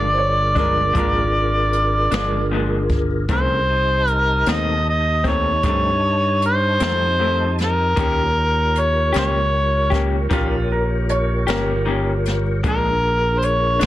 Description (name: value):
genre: slow blues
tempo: 51 BPM (dotted quarters)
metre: 12/8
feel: straight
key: unclear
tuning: A4 = 442 Hz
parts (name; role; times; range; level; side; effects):
- overdriven harmonica; melody; 0.0-13.8 s; Bb4 to Eb5; -19 LUFS; equal; none
- warm upright piano; second line; 0.0-3.1, 10.3-12.4 s; F4 to F5; -27 LUFS; right 2 dB; slapback echo
- electric guitar through a small old amp; accompaniment; 0.0-13.9 s; F2 to G4; -26 LUFS; left 4 dB; tremolo
- mellow tonewheel organ; sustained chords; 0.0-13.9 s; Db4 to A5; -27 LUFS; equal; slow rotary speaker, chorus vibrato
- modern bright fingered electric bass; bass; 0.0-13.9 s; G1 to G2; -22 LUFS; equal; none
- jazz brush drum kit; drums; 0.6-13.9 s; hi-hat, kick drum, snare drum; -25 LUFS; equal; soft clipping on snare
room: moderate spring reverb, RT60 1.9 s, small room reverb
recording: dense, heavily limited modern master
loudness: -16 LUFS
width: side -14 dB against mid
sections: 0.0-3.3 A section; 3.3-13.9 A section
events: none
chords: 0.0 Bb7; 3.3 F7; 8.0 Eb7; 12.6 Bb7